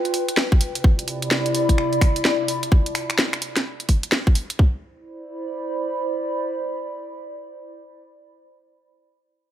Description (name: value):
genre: UK garage, two-step garage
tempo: 128 BPM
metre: 4/4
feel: swing 62% on 16ths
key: C major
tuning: A4 = 440 Hz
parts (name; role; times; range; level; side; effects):
- warbly tape-like pad; texture; 0.0-8.0 s; C3 to B5; -25 LUFS; equal; chorus, built-in reverb, sidechain pumping
- garage drum kit; drums; 0.1-4.6 s; finger snaps, hi-hat, snare drum; -22 LUFS; equal; overdrive, studio reverb
- electronic kick drum; drums; 0.5-4.7 s; none; -16 LUFS; equal; overdrive, studio reverb
room: light reverb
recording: echo-heavy mix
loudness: -19 LUFS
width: side -11 dB against mid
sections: 0.0-4.6 A section; 4.6-8.3 B section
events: none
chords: 0.0 G7; 0.6 Cmaj9; 2.5 Fmaj7; 4.6 Cmaj9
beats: 0.37 | 0.84 1.31 1.78 2.25 | 2.72 3.19 3.65 4.12 | 4.59 5.06 5.53 6.00 | 6.47 6.93 7.40 7.87